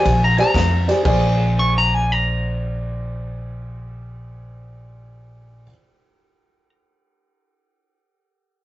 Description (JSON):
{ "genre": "electric blues shuffle", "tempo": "115 BPM", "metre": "4/4", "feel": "swing 67% on 8ths", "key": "Bb mixolydian", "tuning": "A4 = 439 Hz", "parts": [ { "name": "electric guitar at the edge of break-up", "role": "melody", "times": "0.0-6.7 s", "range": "Ab5 to Db6", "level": "-19 LUFS", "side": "left 1 dB", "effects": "warbly pitch drift" }, { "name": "warm grand piano", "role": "accompaniment", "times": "0.0-5.7 s", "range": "G4 to D5", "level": "-23 LUFS", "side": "right 1 dB", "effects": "none" }, { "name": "upright bass", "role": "bass", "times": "0.1-5.7 s", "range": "Bb1 to F2", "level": "-22 LUFS", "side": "equal", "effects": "none" }, { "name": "natural country drum kit", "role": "drums", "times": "0.1-1.2 s", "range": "crash cymbal, kick drum, ride cymbal, snare drum", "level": "-24 LUFS", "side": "equal", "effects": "none" } ], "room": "moderate studio reverb, RT60 0.6 s", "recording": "rough rehearsal-room recording, warm saturation, nothing above 7.7 kHz", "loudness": "-16 LUFS", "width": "side -15 dB against mid", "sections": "0.0-1.1 A section; 1.1-5.2 B section", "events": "slowing down 0.0-1.1", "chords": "0.0 Bb13; 1.1 Bb9" }